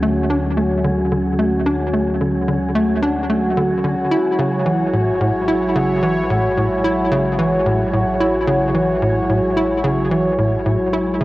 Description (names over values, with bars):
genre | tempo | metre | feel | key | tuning
ambient, sequencer-driven space music | 110 BPM | 4/4 | straight | A major | A4 = 440 Hz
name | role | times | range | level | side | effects
sweeping resonant pad | sustained chords | 0.0-11.2 s | D3 to C#5 | -18 LUFS | equal | chorus, cassette tape
tight sequencer bass | riff | 0.0-11.2 s | A2 to E4 | -19 LUFS | equal | analog chorus, cassette tape, analog delay
warm sub bass | bass | 0.0-11.2 s | A1 to D2 | -29 LUFS | equal | tube saturation
wind-like tuned noise texture | texture | 0.0-11.2 s | G#3 to G#4 | -30 LUFS | equal | built-in reverb, cassette tape
room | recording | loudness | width
wet spring reverb, RT60 1.7 s | home recording on cassette | -15 LUFS | side -17 dB against mid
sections
0.0-11.2 A section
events
none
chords
0.0 Dmaj7; 4.1 A6